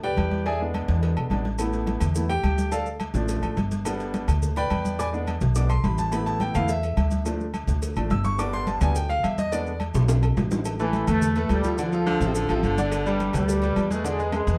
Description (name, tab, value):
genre	latin, salsa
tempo	212 BPM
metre	4/4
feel	straight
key	unclear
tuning	A4 = 439 Hz
part	bright concert grand piano	accompaniment	0.0-14.6 s	D3 to E6	-30 LUFS	equal	none
part	upright bass	bass	0.0-14.6 s	G1 to E2	-28 LUFS	equal	none
part	agogo bells and timbales	percussion	0.0-14.5 s	none	-38 LUFS	equal	none
part	congas	percussion	0.0-14.6 s	none	-33 LUFS	equal	none
part	cowbell and bongos	percussion	0.2-14.6 s	none	-40 LUFS	equal	none
part	maracas	percussion	1.6-14.6 s	none	-44 LUFS	equal	none
part	bright trombone section	melody	10.8-14.6 s	E3 to A3	-28 LUFS	equal	none
part	clear baritone saxophone	second line	12.1-13.4 s	C3 to D3	-30 LUFS	equal	none
room	light reverb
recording	dark, warm production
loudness	-24 LUFS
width	mono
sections	0.0-10.6 A section; 10.6-14.6 B section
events	grand piano solo 0.0-10.6; drum fill 9.9-10.6, 14.3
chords	0.5 E7; 1.6 Asus2; 2.7 Dm; 3.9 G; 5.0 E7; 6.1 Asus2; 7.3 Dm; 8.4 G; 9.5 E7; 10.6 Asus2; 11.8 Dm; 12.9 G; 14.0 E7